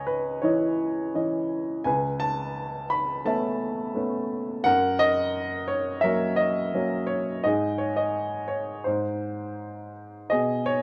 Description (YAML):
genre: classical, lyrical solo piano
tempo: 85 BPM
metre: 4/4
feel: rubato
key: C# minor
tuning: A4 = 440 Hz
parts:
  - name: warm upright piano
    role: solo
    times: 0.0-10.8 s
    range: C#2 to B5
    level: -26 LUFS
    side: equal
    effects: none
room: light reverb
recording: dark, warm production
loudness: -26 LUFS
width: mono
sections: 0.0-10.8 A section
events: none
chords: 0.0 C#madd9; 1.9 Aadd9/C#; 4.7 F#; 7.5 N.C.; 8.9 G#; 10.3 B6